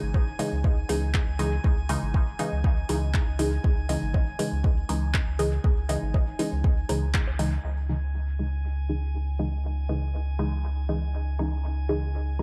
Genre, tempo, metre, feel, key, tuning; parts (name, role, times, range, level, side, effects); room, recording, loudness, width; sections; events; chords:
dub techno; 120 BPM; 4/4; straight; C# minor; A4 = 441 Hz
filtered dub chord stab; stabs; 0.0-12.4 s; C#3 to D#4; -33 LUFS; equal; chorus, phaser, sidechain pumping, dub echo
warm sub bass; bass; 0.0-12.4 s; G#1 to C#2; -30 LUFS; equal; sidechain pumping
drifting glass-harmonics texture; texture; 0.0-12.4 s; G#5; -44 LUFS; equal; chorus, built-in reverb, sidechain pumping
electronic kick drum; drums; 0.1-7.2 s; -26 LUFS; equal
bongos; percussion; 0.1-0.2, 4.1-7.4 s; -46 LUFS; equal
deep house drum kit; drums; 0.4-7.5 s; handclaps, hi-hat; -37 LUFS; equal; low-pass filter on hats, low-pass filter on snare
light reverb; dark, warm production; -26 LUFS; mono
0.0-7.6 A section; 7.6-12.4 B section
band accent 7.1
0.0 C#madd9